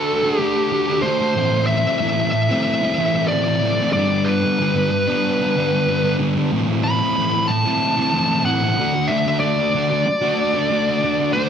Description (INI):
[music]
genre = rock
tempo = 93 BPM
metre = 4/4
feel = straight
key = A dorian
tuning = A4 = 440 Hz
[part]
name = fuzz lead guitar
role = melody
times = 0.0-11.5 s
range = A4 to B5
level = -20 LUFS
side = equal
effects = distortion, slapback echo
[part]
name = fuzz guitar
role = riff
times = 0.0-11.5 s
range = G2 to A4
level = -19 LUFS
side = equal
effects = distortion, slapback echo
[sound]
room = wet recital hall reverb, RT60 1.3 s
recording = big arena sound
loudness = -16 LUFS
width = side -8 dB against mid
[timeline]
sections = 0.0-11.5 A section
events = none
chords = 0.0 D; 1.4 Am; 3.9 G; 6.5 Am; 8.8 D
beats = 0.07 0.72 | 1.36 2.01 2.66 3.30 | 3.95 4.59 5.24 5.88 | 6.53 7.17 7.82 8.46 | 9.10 9.74 10.39 11.03